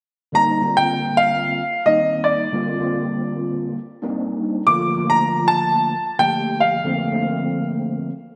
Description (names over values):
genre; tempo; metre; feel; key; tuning
jazz; 111 BPM; 4/4; swing 56% on 16ths; C dorian; A4 = 440 Hz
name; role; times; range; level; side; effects
bright grand piano; melody; 0.3-7.6 s; D5 to D6; -20 LUFS; equal; none
overdriven tine electric piano; accompaniment; 0.3-8.1 s; D3 to G4; -25 LUFS; equal; ensemble chorus
room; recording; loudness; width
wet plate reverb, RT60 2.3 s; bright 1980s-style digital production; -20 LUFS; mono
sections
0.4-8.4 A section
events
none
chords
0.4 Cm9; 4.7 Bbmaj7